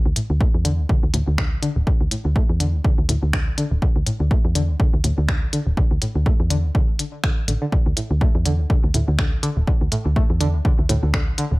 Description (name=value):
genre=minimal techno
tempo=123 BPM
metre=4/4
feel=swing 57% on 16ths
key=unclear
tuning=A4 = 440 Hz
part: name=woody FM bass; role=bass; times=0.1-11.6 s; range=D1 to E2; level=-20 LUFS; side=equal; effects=sidechain pumping
part: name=string-like resonator pluck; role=riff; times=0.2-11.5 s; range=A2 to A3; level=-26 LUFS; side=equal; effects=chorus, sidechain pumping, dub echo
part: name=minimal click drum kit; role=drums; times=0.2-11.5 s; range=finger snaps, hi-hat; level=-26 LUFS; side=left 1 dB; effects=none
part: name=electronic kick drum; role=drums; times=0.4-11.2 s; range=none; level=-19 LUFS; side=equal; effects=none
room=digital ambience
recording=none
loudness=-17 LUFS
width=side -22 dB against mid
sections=0.0-11.6 A section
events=filter sweep on synth pluck 0.0-11.6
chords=0.0 D5